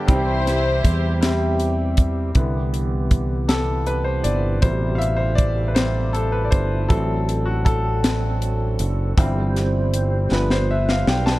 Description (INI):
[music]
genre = slow gospel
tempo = 53 BPM (dotted quarters)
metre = 6/8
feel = straight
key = C major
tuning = A4 = 440 Hz
[part]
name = warm studio string section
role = melody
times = 0.0-1.6 s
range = E4 to C5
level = -25 LUFS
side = left 2 dB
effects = slapback echo
[part]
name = bright baby grand piano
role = accompaniment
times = 0.0-11.4 s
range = G2 to A5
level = -24 LUFS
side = left 1 dB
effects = none
[part]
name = tonewheel organ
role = sustained chords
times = 0.0-11.4 s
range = C3 to C5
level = -30 LUFS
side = right 4 dB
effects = slow rotary speaker, overdrive, chorus vibrato
[part]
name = fingered electric bass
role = bass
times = 0.1-11.4 s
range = F#1 to E2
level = -22 LUFS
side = equal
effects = none
[part]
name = tight funk drum kit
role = drums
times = 0.1-11.4 s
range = hi-hat, kick drum, snare drum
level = -19 LUFS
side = equal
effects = none
[part]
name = mellow French horn section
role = sustained chords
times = 2.4-11.4 s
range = G3 to C5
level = -34 LUFS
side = equal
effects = none
[sound]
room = small room ambience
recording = dark, warm production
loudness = -18 LUFS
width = side -18 dB against mid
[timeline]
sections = 0.0-2.4 A section; 2.4-11.4 B section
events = grand piano solo 2.4-11.4; drum fill 10.3-11.4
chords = 0.1 C; 2.4 Cmaj7; 4.6 Am7; 6.9 D7/A; 9.2 C/G; 10.3 G7